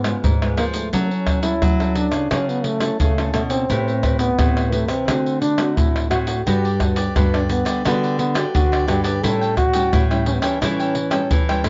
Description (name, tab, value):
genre	samba and choro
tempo	87 BPM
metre	4/4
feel	straight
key	unclear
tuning	A4 = 441 Hz
part	mellow trombone	melody	0.0-11.7 s	A3 to A4	-25 LUFS	equal	none
part	nylon-string guitar	accompaniment	0.0-11.7 s	G#2 to B4	-28 LUFS	equal	none
part	nylon-string guitar	bass	0.0-11.7 s	G2 to F#3	-26 LUFS	equal	none
part	egg shaker, pandeiro, tamborim and surdo	percussion	0.0-11.7 s	none	-23 LUFS	equal	none
part	cavaquinho	accompaniment	6.5-11.7 s	E4 to G5	-30 LUFS	equal	none
room	light reverb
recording	nothing above 7.5 kHz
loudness	-19 LUFS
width	mono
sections	0.0-11.7 A section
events	none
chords	0.0 C#7; 0.9 F#m7; 3.7 Am9; 5.1 D7; 6.5 Gmaj9; 9.2 A7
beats	0.23 | 0.93 1.62 2.31 3.00 | 3.70 4.39 5.08 5.78 | 6.47 7.16 7.85 8.54 | 9.24 9.93 10.62 11.31